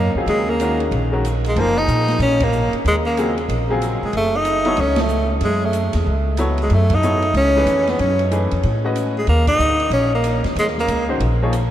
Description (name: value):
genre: modal jazz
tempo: 187 BPM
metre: 4/4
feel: swing 62% on 8ths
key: Eb dorian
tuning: A4 = 441 Hz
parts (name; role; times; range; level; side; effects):
- clear tenor saxophone; melody; 0.0-11.1 s; Ab3 to Eb4; -19 LUFS; equal; none
- upright bass; bass; 0.0-11.7 s; Gb1 to Bb2; -20 LUFS; equal; none
- bright upright piano; accompaniment; 0.2-11.5 s; Db3 to Eb5; -25 LUFS; left 2 dB; none
- open jazz drum kit; drums; 0.3-11.6 s; hi-hat, kick drum, ride cymbal, snare drum; -30 LUFS; right 2 dB; none
room: wet cathedral reverb, RT60 6.2 s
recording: in a vast, echoing space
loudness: -16 LUFS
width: side -11 dB against mid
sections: 0.0-11.7 A section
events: band accent 2.4, 4.9, 6.9, 9.4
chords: 0.0 Ebm9; 4.1 Gbm9; 9.3 Eb7(no3)